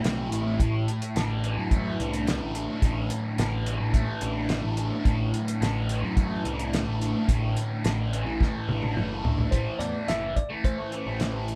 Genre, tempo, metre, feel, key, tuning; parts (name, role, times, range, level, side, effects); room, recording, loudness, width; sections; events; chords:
psychedelic rock; 108 BPM; 4/4; straight; A4 = 441 Hz
fuzz guitar; riff; 0.0-11.6 s; A2 to E4; -31 LUFS; equal; distortion, phaser
fuzz picked electric bass; bass; 0.0-11.6 s; F#1 to F#2; -32 LUFS; equal; overdrive
cloth-damped thuddy drum kit; drums; 0.0-11.6 s; hi-hat, kick drum, snare drum, toms; -29 LUFS; equal
bell-like tine electric piano; melody; 9.5-11.4 s; C5 to E5; -35 LUFS; equal
moderate small room reverb, RT60 0.5 s; band playing live in one room; -27 LUFS; mono
0.0-9.5 A section; 9.5-11.6 B section
drum fill 8.4-9.5
0.0 Amadd9; 0.6 Dsus2/A; 9.5 Am